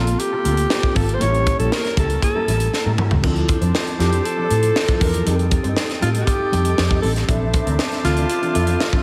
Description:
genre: polished 1980s jazz-funk pop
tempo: 118 BPM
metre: 4/4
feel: straight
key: F major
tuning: A4 = 440 Hz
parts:
  - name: breathy alto saxophone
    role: melody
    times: 0.0-9.0 s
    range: F4 to C#5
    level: -25 LUFS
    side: equal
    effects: slapback echo, delay
  - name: mellow tine electric piano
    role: accompaniment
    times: 0.0-9.0 s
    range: Bb3 to E5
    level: -30 LUFS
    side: equal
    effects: ensemble chorus, slapback echo
  - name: mellow electric guitar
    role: riff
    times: 0.0-9.0 s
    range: E3 to C#5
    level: -29 LUFS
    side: equal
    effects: ensemble chorus
  - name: vintage muted fingered electric bass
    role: bass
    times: 0.0-8.8 s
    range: Ab1 to A2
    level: -23 LUFS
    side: equal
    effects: none
  - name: tight funk drum kit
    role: drums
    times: 0.1-9.0 s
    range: hi-hat, kick drum, snare drum, splash cymbal, toms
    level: -24 LUFS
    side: equal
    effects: none
  - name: breathy bright flute section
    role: sustained chords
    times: 3.2-9.0 s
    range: A4 to Eb6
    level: -33 LUFS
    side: equal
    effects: none
room: moderate lush hall reverb, RT60 2.2 s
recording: big arena sound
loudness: -19 LUFS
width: mono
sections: 0.0-9.0 A section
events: drum fill 2.7-3.2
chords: 0.0 Gm11; 1.2 A7b9; 3.2 Dm7; 5.3 F9; 7.3 Bbmaj9#11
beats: 0.20 0.70 | 1.21 1.72 2.22 2.73 | 3.24 3.74 4.25 4.76 | 5.26 5.77 6.27 6.78 | 7.29 7.79 8.30 8.80

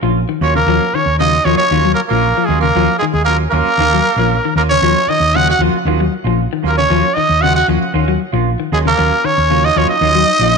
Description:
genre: afrobeat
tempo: 116 BPM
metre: 4/4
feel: straight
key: Eb minor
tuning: A4 = 440 Hz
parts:
  - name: clean electric guitar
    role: arpeggios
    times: 0.0-10.6 s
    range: Db3 to Gb3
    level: -19 LUFS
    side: left 10 dB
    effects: none
  - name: semi-hollow electric guitar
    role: stabs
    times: 0.0-10.6 s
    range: Gb3 to F4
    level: -22 LUFS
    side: right 10 dB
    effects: wide subtle chorus
  - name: hollow-body short-scale fingered electric bass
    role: bass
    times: 0.0-10.6 s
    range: Bb1 to Eb2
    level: -17 LUFS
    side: equal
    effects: none
  - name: growling trumpet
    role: melody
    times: 0.4-10.6 s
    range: Ab4 to Gb5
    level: -15 LUFS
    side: equal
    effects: tape echo
  - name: growling tenor saxophone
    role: second line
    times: 0.4-10.6 s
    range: Ab3 to Gb4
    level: -20 LUFS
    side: right 10 dB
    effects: none
room: moderate echo chamber reverb, RT60 1.3 s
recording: 1960s-style stereo with parts hard left and right, nothing above 10.3 kHz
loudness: -11 LUFS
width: side -5 dB against mid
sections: 0.0-10.6 A section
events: none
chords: 0.0 Ebm9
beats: 0.16 | 0.68 1.20 1.72 2.23 | 2.75 3.27 3.79 4.31 | 4.83 5.35 5.87 6.39 | 6.91 7.43 7.95 8.47 | 8.99 9.51 10.03 10.54

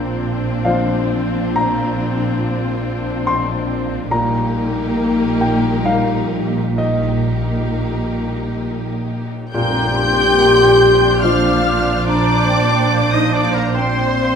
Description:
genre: cinematic, emotional film score for orchestra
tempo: 63-72 BPM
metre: 3/4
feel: rubato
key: Bb major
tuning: A4 = 442 Hz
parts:
  - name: muted symphonic violin section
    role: melody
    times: 0.0-14.4 s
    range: F4 to G6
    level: -24 LUFS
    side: left 2 dB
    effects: none
  - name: muted symphonic violin section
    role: second line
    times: 0.0-14.4 s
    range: D4 to G5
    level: -26 LUFS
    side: left 3 dB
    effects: none
  - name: muted chamber viola section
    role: accompaniment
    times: 0.0-14.4 s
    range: Bb3 to C5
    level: -24 LUFS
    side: equal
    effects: none
  - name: warm baby grand piano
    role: accompaniment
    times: 0.0-14.4 s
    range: Bb2 to C6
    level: -22 LUFS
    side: left 2 dB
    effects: none
  - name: dark French horn section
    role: sustained chords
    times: 0.0-14.4 s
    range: G3 to G4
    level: -21 LUFS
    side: left 2 dB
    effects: none
  - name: muted symphonic cello section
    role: bass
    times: 0.0-14.4 s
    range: Bb2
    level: -23 LUFS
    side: right 2 dB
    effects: none
  - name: muted symphonic double bass section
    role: bass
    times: 0.0-14.4 s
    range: Bb1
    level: -24 LUFS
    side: right 3 dB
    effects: none
  - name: cymbal swell and tam-tam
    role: percussion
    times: 6.8-12.9 s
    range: none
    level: -30 LUFS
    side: left 1 dB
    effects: none
  - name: bright oboe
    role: second line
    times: 9.5-14.4 s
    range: Bb4 to G5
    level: -24 LUFS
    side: right 1 dB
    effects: none
  - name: mellow hollow small flute group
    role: second line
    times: 9.5-14.4 s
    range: F5 to D6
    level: -24 LUFS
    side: left 3 dB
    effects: none
  - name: warm clarinet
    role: second line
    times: 9.5-14.4 s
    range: Bb3 to G4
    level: -24 LUFS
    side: right 1 dB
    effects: none
room: moderate scoring stage reverb, RT60 1.7 s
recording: minimal, uncompressed stereo recording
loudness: -14 LUFS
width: side -7 dB against mid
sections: 0.0-9.5 A section; 9.5-14.4 A section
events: band accent 9.5-10.4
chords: 0.0 Bbadd9; 4.1 Eb/Bb; 9.5 Bbadd9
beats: 0.65 | 1.55 2.41 3.25 | 4.11 4.96 5.84 | 6.78 7.72 8.64 | 9.54 10.38 11.22 | 12.07 12.92 13.77

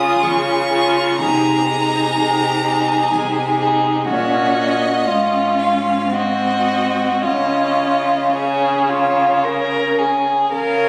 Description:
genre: classical, slow romantic movement for string quartet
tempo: 52-64 BPM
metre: 3/4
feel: rubato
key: Db major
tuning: A4 = 440 Hz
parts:
  - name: rich violin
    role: melody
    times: 0.0-10.9 s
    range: Db5 to Eb6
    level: -25 LUFS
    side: equal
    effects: none
  - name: warm violin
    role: second line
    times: 0.0-10.9 s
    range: F4 to Bb4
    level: -20 LUFS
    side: equal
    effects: none
  - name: warm viola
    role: accompaniment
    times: 0.0-10.9 s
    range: C4 to F4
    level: -24 LUFS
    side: equal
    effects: none
  - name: rich cello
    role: bass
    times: 0.0-10.9 s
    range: Ab2 to Db3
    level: -25 LUFS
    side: equal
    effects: none
room: wet concert hall reverb, RT60 1.7 s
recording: recorded on a phone in the room, club reverb, compression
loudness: -17 LUFS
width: mono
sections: 0.0-10.5 A section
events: none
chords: 0.0 Db; 1.2 Ab/C; 4.1 Gb/Bb; 5.1 Db/Ab; 6.1 Ab7; 7.2 Db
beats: 0.25 | 1.21 2.17 3.13 | 4.08 5.07 6.12 | 7.22 8.35 9.43 | 10.53

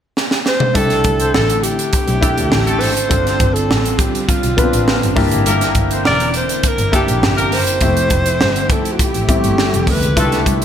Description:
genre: polished 1980s jazz-funk pop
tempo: 102 BPM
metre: 4/4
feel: straight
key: C major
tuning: A4 = 438 Hz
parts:
  - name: crisp fusion drum kit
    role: drums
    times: 0.2-10.6 s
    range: hi-hat, kick drum, snare drum, toms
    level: -17 LUFS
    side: right 1 dB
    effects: gated reverb
  - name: breathy alto saxophone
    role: melody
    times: 0.5-10.5 s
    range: F4 to D5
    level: -19 LUFS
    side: right 1 dB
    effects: none
  - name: clear horn section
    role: second line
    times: 0.7-10.6 s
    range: G3 to C5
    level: -23 LUFS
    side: equal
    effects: digital delay
  - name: warm grand piano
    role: accompaniment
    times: 0.7-10.6 s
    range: G3 to B4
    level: -20 LUFS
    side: left 3 dB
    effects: lush chorus
  - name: muted double bass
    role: bass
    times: 0.7-10.6 s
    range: E1 to D2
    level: -19 LUFS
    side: equal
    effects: none
  - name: soft string machine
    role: sustained chords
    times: 1.3-10.6 s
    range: D3 to G4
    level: -26 LUFS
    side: equal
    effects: ensemble chorus
room: moderate lush hall reverb, RT60 1.8 s, small room ambience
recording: bright 1980s-style digital production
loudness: -13 LUFS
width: side -9 dB against mid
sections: 0.8-10.6 A section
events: drum fill 0.2-0.8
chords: 0.0 N.C.; 0.8 C69; 3.1 G7sus4; 5.2 C9; 7.8 Fmaj9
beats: 0.16 | 0.75 1.34 1.93 2.52 | 3.11 3.69 4.28 4.87 | 5.46 6.05 6.64 7.23 | 7.81 8.40 8.99 9.58 | 10.17

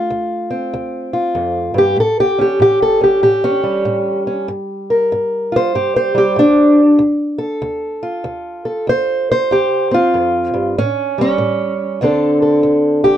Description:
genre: acoustic country blues, solo or duo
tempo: 96 BPM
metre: 4/4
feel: swing 64% on 8ths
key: D minor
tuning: A4 = 440 Hz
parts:
  - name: fingerpicked old ladder-braced acoustic guitar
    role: solo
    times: 0.0-13.2 s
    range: D2 to C5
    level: -13 LUFS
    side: equal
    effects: none
room: moderate booth ambience, RT60 0.2 s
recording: dark, warm production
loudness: -13 LUFS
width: side -10 dB against mid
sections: 0.0-12.0 A section; 12.0-13.2 B section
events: steel-string acoustic guitar solo 12.0-13.2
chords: 0.0 Dm7; 2.0 A7; 4.5 Gm; 7.0 Dm7; 10.8 A7; 12.0 D7(no3)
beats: 0.09 0.71 1.34 | 1.97 2.60 3.23 3.86 | 4.49 5.12 5.75 6.38 | 7.01 7.63 8.26 8.89 | 9.52 10.14 10.77 11.39 | 12.02 12.64

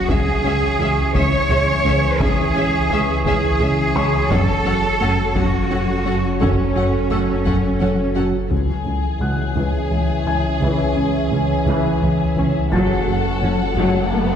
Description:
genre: cinematic, hybrid orchestral and electronic film score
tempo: 57 BPM (dotted quarters)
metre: 6/8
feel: straight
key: C# minor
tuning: A4 = 440 Hz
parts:
  - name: analog drone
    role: sustained chords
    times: 0.0-14.4 s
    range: E3 to C#5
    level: -23 LUFS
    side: equal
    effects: chorus, low-pass filter
  - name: clear symphonic cello section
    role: bass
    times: 0.0-14.2 s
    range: C#2 to C#5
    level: -23 LUFS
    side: right 2 dB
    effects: none
  - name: sub bass with octave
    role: bass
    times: 0.0-14.4 s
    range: F#1 to C#2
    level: -25 LUFS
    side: left 1 dB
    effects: none
  - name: felt-muted upright piano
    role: texture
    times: 0.0-14.4 s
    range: C#5 to A6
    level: -30 LUFS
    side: left 2 dB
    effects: none
  - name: rich studio violin section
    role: melody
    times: 0.1-14.4 s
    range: E5 to F#5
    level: -31 LUFS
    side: left 4 dB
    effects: low-pass filter
  - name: clear symphonic viola section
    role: accompaniment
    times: 0.1-14.2 s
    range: E3 to A4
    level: -28 LUFS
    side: right 1 dB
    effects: low-pass filter
  - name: thumb-piano-like synth pluck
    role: arpeggios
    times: 0.1-14.3 s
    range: C#3 to F#4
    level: -27 LUFS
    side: left 2 dB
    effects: chorus, low-pass filter
  - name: smooth gliding synth bass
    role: riff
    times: 0.1-14.3 s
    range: C#2 to F#3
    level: -24 LUFS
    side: right 1 dB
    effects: low-pass filter
  - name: clear studio double bass section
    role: bass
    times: 0.1-14.2 s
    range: F#1 to F#2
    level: -26 LUFS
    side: right 1 dB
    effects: none
  - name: taiko ensemble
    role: drums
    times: 0.1-14.1 s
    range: none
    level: -26 LUFS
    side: equal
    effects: none
  - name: rich symphonic violin section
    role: second line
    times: 8.5-14.4 s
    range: G#4 to A4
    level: -27 LUFS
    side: left 4 dB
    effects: none
  - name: riser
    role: sound effects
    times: 13.4-14.4 s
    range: none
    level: -25 LUFS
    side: left 2 dB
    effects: none
room: wet scoring stage reverb, RT60 1.7 s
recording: heard from further back in the room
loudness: -16 LUFS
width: side -8 dB against mid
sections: 0.0-8.5 A section; 8.5-14.4 B section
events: filter sweep 8.5-14.4; riser 13.4-14.4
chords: 0.1 C#m; 4.3 F#m; 8.5 C#m; 12.7 F#m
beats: | 0.09 1.15 | 2.20 3.25 | 4.30 5.36 | 6.41 7.46 | 8.51 9.57 | 10.62 11.67 | 12.72 13.78

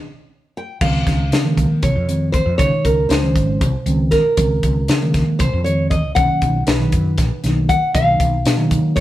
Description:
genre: electric jazz fusion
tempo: 236 BPM (eighths)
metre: 7/8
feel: straight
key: unclear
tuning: A4 = 440 Hz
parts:
  - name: nylon-string guitar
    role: melody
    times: 0.0-9.0 s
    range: Bb4 to G5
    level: -20 LUFS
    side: equal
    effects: none
  - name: mellow tine electric piano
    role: accompaniment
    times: 0.8-9.0 s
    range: A#2 to Eb4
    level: -21 LUFS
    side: right 1 dB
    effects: slow stereo tremolo
  - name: woody fretless electric bass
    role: bass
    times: 0.8-9.0 s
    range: Ab1 to Db3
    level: -19 LUFS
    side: equal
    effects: none
  - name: crisp fusion drum kit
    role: drums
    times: 0.8-9.0 s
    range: crash cymbal, hi-hat, kick drum, snare drum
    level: -20 LUFS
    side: equal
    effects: none
room: moderate stone room reverb, RT60 1.0 s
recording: band playing live in one room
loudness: -14 LUFS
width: side -14 dB against mid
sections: 0.8-9.0 A section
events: band accent 0.0-0.8; tine electric piano fill 0.0-0.8; drum fill 0.4-0.8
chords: 0.0 N.C.; 0.8 Dbmaj9; 6.2 Bmaj9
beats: 0.05 0.30 0.56 | 0.81 1.07 1.32 1.58 1.83 2.09 2.34 | 2.60 2.85 3.11 3.36 3.62 3.87 4.13 | 4.38 4.64 4.89 5.15 5.40 5.66 5.91 | 6.17 6.42 6.67 6.93 7.18 7.44 7.69 | 7.95 8.20 8.46 8.71 8.97

